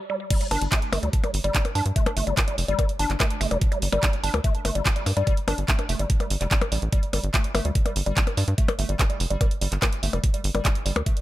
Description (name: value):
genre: psychedelic trance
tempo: 145 BPM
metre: 4/4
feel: straight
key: unclear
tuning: A4 = 441 Hz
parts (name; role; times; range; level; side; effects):
- woody wave-folded pluck; riff; 0.1-11.1 s; G3 to D4; -30 LUFS; moving between left 4 dB and right 2 dB; chorus, auto-pan, sidechain pumping, tape echo
- electronic kick drum; drums; 0.3-11.1 s; none; -23 LUFS; equal; none
- techno drum kit; drums; 0.3-11.2 s; crash cymbal, handclaps, hi-hat, percussion blips; -27 LUFS; left 1 dB; none
- tight sequencer bass; bass; 0.5-11.0 s; F1 to G2; -25 LUFS; equal; none
room: little or no reverb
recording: none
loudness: -21 LUFS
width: side -15 dB against mid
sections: 0.3-11.2 A section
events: drop 0.3-11.2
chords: 0.3 G5